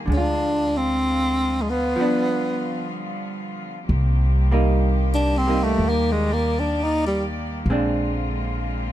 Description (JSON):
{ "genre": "jazz ballad", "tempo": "64 BPM", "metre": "4/4", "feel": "swing 66% on 8ths", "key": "C minor", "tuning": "A4 = 440 Hz", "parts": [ { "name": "vintage hollow-body jazz guitar", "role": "accompaniment", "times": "0.0-8.9 s", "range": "D3 to F4", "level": "-26 LUFS", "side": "right 1 dB", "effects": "none" }, { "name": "clear studio cello section", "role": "sustained chords", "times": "0.0-8.9 s", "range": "D3 to D5", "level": "-30 LUFS", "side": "left 1 dB", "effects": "none" }, { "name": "warm tenor saxophone", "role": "melody", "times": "0.1-7.2 s", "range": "G3 to Eb4", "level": "-22 LUFS", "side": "equal", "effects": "none" }, { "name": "upright bass", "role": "bass", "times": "0.1-8.9 s", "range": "Bb1 to Eb2", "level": "-22 LUFS", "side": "equal", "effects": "none" } ], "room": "little or no reverb", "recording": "close, detailed microphones", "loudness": "-19 LUFS", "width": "side -13 dB against mid", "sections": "0.0-3.9 A section; 3.9-8.9 B section", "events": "break 2.0-3.9; tenor saxophone solo 3.9-8.9", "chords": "0.1 Dm7b5; 2.0 G7; 3.9 Cm7; 7.7 Bb9", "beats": "| 0.09 1.03 1.97 2.93 | 3.88 4.83 5.78 6.73 | 7.67 8.61" }